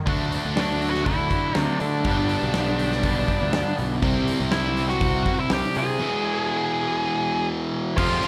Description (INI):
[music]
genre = quiet-loud alternative rock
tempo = 121 BPM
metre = 4/4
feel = straight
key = unclear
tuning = A4 = 440 Hz
[part]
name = twangy electric guitar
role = arpeggios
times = 0.0-4.0 s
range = G2 to G4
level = -35 LUFS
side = equal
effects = ensemble chorus
[part]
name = biting overdriven guitar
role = riff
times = 0.1-8.3 s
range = F2 to E4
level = -32 LUFS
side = equal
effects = none
[part]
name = distorted electric guitar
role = riff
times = 0.1-8.3 s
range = E2 to D4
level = -30 LUFS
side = equal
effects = overdrive
[part]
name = fuzz picked electric bass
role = bass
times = 0.1-8.2 s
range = G1 to D3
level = -30 LUFS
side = equal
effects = overdrive
[part]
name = big rock drum kit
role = drums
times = 0.1-8.3 s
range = crash cymbal, hi-hat, kick drum, snare drum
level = -30 LUFS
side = equal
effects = none
[part]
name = octave-fuzz lead guitar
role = melody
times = 0.6-8.3 s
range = D4 to G#5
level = -28 LUFS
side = equal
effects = distortion
[part]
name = rich symphonic string section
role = sustained chords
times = 8.0-8.3 s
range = F4 to Ab5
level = -37 LUFS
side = equal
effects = none
[part]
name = cranked stack guitar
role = riff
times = 8.0-8.3 s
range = F2 to F3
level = -33 LUFS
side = equal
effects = none
[sound]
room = studio ambience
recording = none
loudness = -23 LUFS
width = mono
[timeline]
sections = 0.1-8.0 A section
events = none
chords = 0.1 D; 2.1 G; 4.0 C; 6.0 E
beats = | 0.07 0.57 1.07 1.56 | 2.06 2.55 3.05 3.54 | 4.04 4.53 5.02 5.52 | 6.01 6.50 7.00 7.49 | 7.98